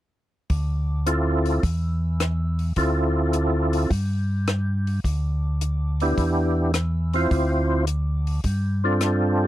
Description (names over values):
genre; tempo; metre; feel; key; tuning
soul jazz organ trio; 106 BPM; 4/4; swing 69% on 8ths; unclear; A4 = 440 Hz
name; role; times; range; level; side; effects
tonewheel organ; bass; 0.5-9.5 s; D2 to G2; -23 LUFS; equal; overdrive, slow rotary speaker
compact cocktail drum kit; drums; 0.5-9.2 s; hi-hat, kick drum, rim click; -27 LUFS; left 1 dB; none
overdriven tonewheel organ; melody; 1.1-9.5 s; B3 to C5; -22 LUFS; right 1 dB; slow rotary speaker, chorus vibrato
room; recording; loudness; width
little or no reverb; dry, close 1970s-style studio recording; -21 LUFS; side -14 dB against mid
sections
0.5-9.5 A section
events
none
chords
0.5 Dm7; 1.6 N.C.; 2.8 Dm7; 3.9 N.C.; 5.0 G6/D; 6.2 Em7; 7.3 Dm7; 8.4 G9sus4